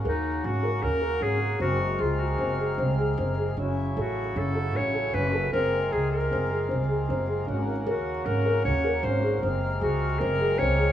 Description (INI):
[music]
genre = contemporary instrumental, chamber music in an uneven meter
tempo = 153 BPM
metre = 5/4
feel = straight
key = Gb lydian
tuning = A4 = 440 Hz
[part]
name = pedal harmonium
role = sustained chords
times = 0.0-10.9 s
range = C3 to F5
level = -32 LUFS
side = equal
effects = none
[part]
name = felt-muted upright piano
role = arpeggios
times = 0.0-10.9 s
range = C4 to Bb4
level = -30 LUFS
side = left 2 dB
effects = none
[part]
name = clear clarinet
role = melody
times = 0.1-10.9 s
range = Eb4 to Db5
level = -28 LUFS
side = left 1 dB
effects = none
[part]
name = upright bass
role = bass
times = 0.1-10.9 s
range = Gb1 to Eb2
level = -28 LUFS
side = right 1 dB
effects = none
[sound]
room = moderate studio reverb, RT60 0.8 s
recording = small room ambience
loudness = -24 LUFS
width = side -11 dB against mid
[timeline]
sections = 0.0-10.9 A section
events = none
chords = 0.0 Ab9sus4; 1.6 Gbmaj9#11; 3.6 Gbm7; 5.5 Gbmaj9#11; 7.5 Ab9sus4; 9.4 Gbmaj9#11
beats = 0.05 0.44 0.83 1.22 | 1.61 2.00 2.40 2.79 3.18 | 3.57 3.96 4.35 4.75 5.14 | 5.53 5.92 6.31 6.70 7.09 | 7.48 7.87 8.26 8.65 9.04 | 9.43 9.82 10.21 10.60